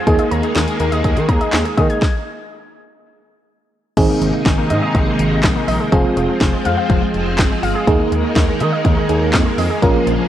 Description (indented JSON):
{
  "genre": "synth-pop",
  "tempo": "123 BPM",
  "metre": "4/4",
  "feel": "straight",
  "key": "Ab major",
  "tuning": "A4 = 445 Hz",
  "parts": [
    { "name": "FM electric piano with auto-pan", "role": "accompaniment", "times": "0.0-10.3 s", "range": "Bb3 to Bb4", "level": "-21 LUFS", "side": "right 2 dB", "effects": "none" },
    { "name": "string machine, violins", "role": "sustained chords", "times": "0.0-10.3 s", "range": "C3 to F4", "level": "-21 LUFS", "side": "equal", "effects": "ensemble chorus" },
    { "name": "warbly dusty pluck", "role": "arpeggios", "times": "0.0-10.3 s", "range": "Eb3 to Ab6", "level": "-22 LUFS", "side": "equal", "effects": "chorus, tape echo" },
    { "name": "smooth gliding synth bass", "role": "bass", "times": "0.1-10.2 s", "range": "F1 to Eb3", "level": "-21 LUFS", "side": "equal", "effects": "none" },
    { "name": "house drum kit", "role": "drums", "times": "0.1-10.2 s", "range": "crash cymbal, handclaps, hi-hat, kick drum, snare drum", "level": "-17 LUFS", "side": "equal", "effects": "overdrive" }
  ],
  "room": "light reverb",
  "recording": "worn, warbling old tape, cassette tape, warbly pitch drift",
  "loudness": "-14 LUFS",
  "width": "side -11 dB against mid",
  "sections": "0.0-4.0 A section; 4.0-10.3 B section",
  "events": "stop 2.0-4.0",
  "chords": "0.1 Ebsus4; 2.0 N.C.; 4.0 Abadd9; 5.9 Fm; 7.9 Ebsus4"
}